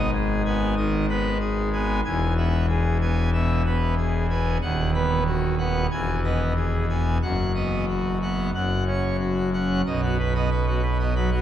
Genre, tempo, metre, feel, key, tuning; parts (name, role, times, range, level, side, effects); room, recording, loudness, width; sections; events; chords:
classical, organ toccata; 93 BPM; 4/4; straight; B major; A4 = 439 Hz
pipe organ, full organ; solo; 0.0-11.4 s; D#1 to G#5; -21 LUFS; equal
wet cathedral reverb, RT60 4.5 s; dark, warm production; -21 LUFS; side -11 dB against mid
0.0-9.9 A section; 9.9-11.4 B section
0.0 G#m; 2.1 E; 4.6 B/D#; 5.9 Emaj7; 7.2 B/F#; 8.5 F#5; 9.9 B